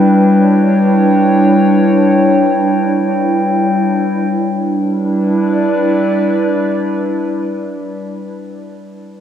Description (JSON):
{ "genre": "ambient", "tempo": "free time", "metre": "none", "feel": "none", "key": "E dorian", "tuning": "A4 = 440 Hz", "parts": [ { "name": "warbly tape-like pad", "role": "sustained chords", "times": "0.0-8.0 s", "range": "G3 to D5", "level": "-12 LUFS", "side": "equal", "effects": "chorus, built-in reverb" }, { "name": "glass harmonica", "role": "texture", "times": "0.0-4.3 s", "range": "G5", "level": "-19 LUFS", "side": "left 1 dB", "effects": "none" } ], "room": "wet cathedral reverb, RT60 6.0 s", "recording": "worn, warbling old tape, cassette tape, warbly pitch drift", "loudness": "-11 LUFS", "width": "side -9 dB against mid", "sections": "0.0-4.3 A section; 4.3-7.3 B section", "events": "none", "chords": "0.0 Em7" }